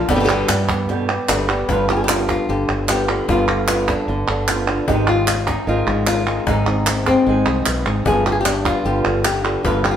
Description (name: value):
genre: flamenco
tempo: 151 BPM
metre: 4/4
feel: straight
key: G phrygian dominant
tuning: A4 = 438 Hz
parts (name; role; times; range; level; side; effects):
- flamenco guitar; melody; 0.0-10.0 s; G2 to B4; -19 LUFS; left 2 dB; none
- flamenco guitar; stabs; 0.0-10.0 s; B2 to Ab4; -24 LUFS; right 4 dB; none
- mellow fretless electric bass; bass; 0.0-10.0 s; G1 to G2; -24 LUFS; right 1 dB; none
- cajon; percussion; 0.1-9.8 s; none; -25 LUFS; left 2 dB; none
- palmas hand claps; percussion; 0.3-10.0 s; none; -22 LUFS; right 4 dB; none
room: wet large studio reverb, RT60 0.9 s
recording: band playing live in one room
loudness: -16 LUFS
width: side -9 dB against mid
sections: 0.0-1.7 A section; 1.7-10.0 B section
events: none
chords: 0.1 G; 1.7 G7; 4.9 Ab; 8.1 G7